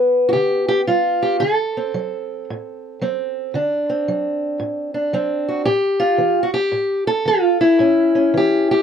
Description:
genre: acoustic country blues, solo or duo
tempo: 113 BPM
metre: 4/4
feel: swing 64% on 8ths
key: D mixolydian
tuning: A4 = 440 Hz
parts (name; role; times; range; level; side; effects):
- fingerpicked steel-string acoustic guitar; solo; 0.0-8.8 s; A2 to B4; -16 LUFS; equal; none
room: light reverb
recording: dry, close 1970s-style studio recording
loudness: -16 LUFS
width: side -8 dB against mid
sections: 0.0-8.8 A section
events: none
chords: 0.0 G7; 1.4 D7; 5.7 A7

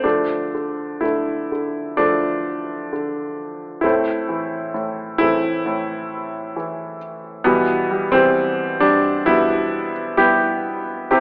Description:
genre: classical, lyrical solo piano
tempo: 66 BPM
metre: 4/4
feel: rubato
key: D dorian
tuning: A4 = 440 Hz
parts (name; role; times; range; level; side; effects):
- clear baby grand piano; solo; 0.0-11.2 s; A2 to G4; -20 LUFS; equal; none
room: moderate recital hall reverb, RT60 1.5 s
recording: telephone sound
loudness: -20 LUFS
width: mono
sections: 0.0-11.2 A section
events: none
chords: 0.0 Dm; 3.8 Am; 7.5 Em/B

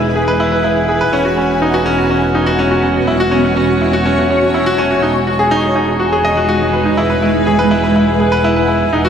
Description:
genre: piano and strings electronica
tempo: 123 BPM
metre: 4/4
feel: straight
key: E major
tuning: A4 = 440 Hz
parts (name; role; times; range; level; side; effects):
- granular cloud pad; sustained chords; 0.0-9.1 s; G#3 to A5; -17 LUFS; right 1 dB; built-in reverb, ensemble chorus
- bright grand piano; riff; 0.0-9.1 s; C#4 to D#5; -14 LUFS; equal; analog delay
- warm studio double bass section; bass; 0.0-9.1 s; E1; -19 LUFS; equal; none
room: wet cathedral reverb, RT60 4.6 s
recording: dreamy mix soaked in reverb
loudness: -11 LUFS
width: side -8 dB against mid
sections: 0.0-9.1 A section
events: none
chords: 0.0 E; 1.1 Badd9/E; 3.1 F#m7/E; 5.0 G#m7/E; 7.0 E

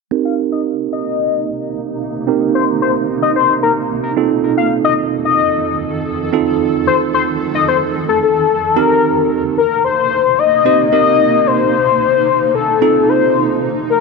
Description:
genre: pop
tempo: 111 BPM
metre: 4/4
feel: straight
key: C dorian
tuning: A4 = 436 Hz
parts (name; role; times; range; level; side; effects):
- bell-like tine electric piano; accompaniment; 0.1-13.7 s; C4 to C5; -17 LUFS; right 12 dB; low-pass filter
- granular cloud pad; sustained chords; 1.0-14.0 s; F2 to A4; -22 LUFS; right 2 dB; built-in reverb, low-pass filter
- octave-doubled lead; melody; 0.3-8.2 s; A4 to F5; -17 LUFS; left 9 dB; chorus, low-pass filter, tape echo
- warm velvety synth lead; melody; 8.2-14.0 s; A4 to Eb5; -12 LUFS; left 10 dB; chorus
room: moderate echo chamber reverb, RT60 1.6 s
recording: 1960s-style stereo with parts hard left and right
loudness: -12 LUFS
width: side -3 dB against mid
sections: 0.1-8.8 A section; 8.8-14.0 B section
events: filter sweep 0.1-8.8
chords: 0.1 Cm7; 4.2 F7; 8.8 Cm7; 12.8 F7

